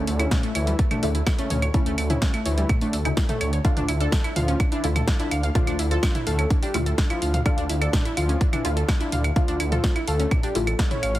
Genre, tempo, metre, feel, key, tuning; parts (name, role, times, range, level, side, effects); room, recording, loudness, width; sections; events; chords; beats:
melodic techno; 126 BPM; 4/4; straight; D harmonic minor; A4 = 440 Hz
fat analog lead; melody; 0.0-11.1 s; A3 to C#5; -30 LUFS; equal; sidechain pumping, ping-pong delay
filtered dub chord stab; stabs; 0.0-10.7 s; C#3 to F4; -32 LUFS; left 2 dB; phaser, ensemble chorus, sidechain pumping, ping-pong delay
dark detuned saw bass; bass; 0.0-11.2 s; A1 to D2; -24 LUFS; equal; sidechain pumping
wide unison pluck; arpeggios; 0.1-11.2 s; G3 to F5; -29 LUFS; equal; sidechain pumping, ping-pong delay
punchy analog drum machine; drums; 0.1-11.2 s; claves, hi-hat, snare drum, toms; -28 LUFS; right 1 dB; overdrive
electronic kick drum; drums; 0.3-10.9 s; -22 LUFS; equal
light reverb; heavily compressed radio sound; -20 LUFS; side -15 dB against mid
0.0-11.2 A section
0.0 A/D; 3.6 Dm
0.31 0.79 1.27 | 1.74 2.22 2.69 3.17 | 3.65 4.12 4.60 5.08 | 5.55 6.03 6.50 6.98 | 7.46 7.93 8.41 8.88 | 9.36 9.84 10.31 10.79